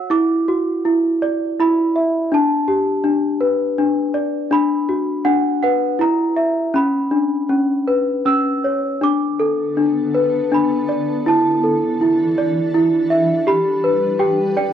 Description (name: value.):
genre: children's music, lullaby.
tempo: 81 BPM.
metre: 3/4.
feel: rubato.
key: B minor.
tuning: A4 = 440 Hz.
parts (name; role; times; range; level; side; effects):
worn celesta; melody; 0.0-14.7 s; C#4 to E6; -16 LUFS; equal; plate reverb.
granular cloud pad; sustained chords; 9.7-14.7 s; D3 to B4; -24 LUFS; equal; built-in reverb.
room: moderate studio reverb, RT60 0.6 s.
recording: worn, warbling old tape, cassette tape, warbly pitch drift.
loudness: -15 LUFS.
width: side -9 dB against mid.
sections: 0.0-9.0 A section; 9.0-14.7 A section.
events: none.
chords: 0.1 Dadd9; 2.3 G; 4.5 Bm; 6.0 N.C.; 6.7 Bmadd9; 9.0 Bm7; 11.3 Dsus2; 13.5 G.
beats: | 0.10 0.85 1.60 | 2.33 3.05 3.79 | 4.52 5.26 6.00 | 6.74 7.49 8.25 | 9.01 9.77 10.52 | 11.27 12.01 12.74 | 13.47 14.19.